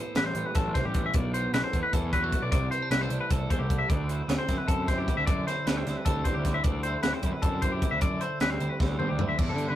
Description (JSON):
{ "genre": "math rock and midwest emo", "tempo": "306 BPM (eighths)", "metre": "7/8", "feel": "straight", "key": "unclear", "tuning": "A4 = 440 Hz", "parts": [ { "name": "twelve-string electric guitar", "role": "accompaniment", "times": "0.0-9.8 s", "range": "E2 to E4", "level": "-34 LUFS", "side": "right 2 dB", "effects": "none" }, { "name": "twangy electric guitar", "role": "arpeggios", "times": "0.0-9.8 s", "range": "F#4 to E5", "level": "-31 LUFS", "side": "left 2 dB", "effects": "none" }, { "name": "fuzz picked electric bass", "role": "bass", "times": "0.2-9.8 s", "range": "A1 to D3", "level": "-31 LUFS", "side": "equal", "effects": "overdrive" }, { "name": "crisp fusion drum kit", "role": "drums", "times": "0.2-9.7 s", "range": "crash cymbal, hi-hat, kick drum, snare drum, toms", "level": "-28 LUFS", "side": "equal", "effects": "none" } ], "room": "light reverb", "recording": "rough rehearsal-room recording, warm saturation", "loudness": "-25 LUFS", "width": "side -12 dB against mid", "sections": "0.0-9.4 A section", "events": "drum fill 8.8-9.4", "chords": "0.0 Am9; 1.1 B7sus4; 2.5 C69; 3.9 D9sus4" }